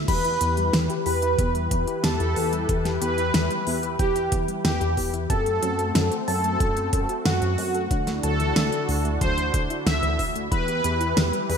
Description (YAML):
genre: synthwave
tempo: 92 BPM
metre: 4/4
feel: straight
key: E minor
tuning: A4 = 439 Hz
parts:
  - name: warm analog pad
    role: sustained chords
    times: 0.0-11.6 s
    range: D3 to B4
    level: -30 LUFS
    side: left 1 dB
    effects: chorus, sidechain pumping
  - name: soft round pluck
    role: arpeggios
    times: 0.0-11.6 s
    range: D3 to A4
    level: -34 LUFS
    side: left 4 dB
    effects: chorus, cassette tape, ping-pong delay
  - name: chorused synth bass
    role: bass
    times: 0.0-11.6 s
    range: D2 to F#2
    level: -27 LUFS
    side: equal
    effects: tube saturation
  - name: soft supersaw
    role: melody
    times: 0.1-11.6 s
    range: F#4 to E5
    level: -26 LUFS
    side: equal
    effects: phaser, ping-pong delay
  - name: FM electric piano with soft pad layer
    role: second line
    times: 0.1-11.6 s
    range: F#5 to E6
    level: -34 LUFS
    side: right 1 dB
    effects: chorus, phaser, cassette tape, ping-pong delay
  - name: electronic kick drum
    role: drums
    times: 0.1-10.6 s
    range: none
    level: -26 LUFS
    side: equal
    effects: none
  - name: pop drum kit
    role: drums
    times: 0.1-11.6 s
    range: crash cymbal, hi-hat, snare drum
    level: -27 LUFS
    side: equal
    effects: gated reverb
room: moderate lush hall reverb, RT60 1.8 s, digital ambience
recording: bright 1980s-style digital production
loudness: -21 LUFS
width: side -6 dB against mid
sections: 0.1-11.6 A section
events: none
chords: 0.1 Em; 5.3 F#dim; 7.9 Dadd9; 10.5 Em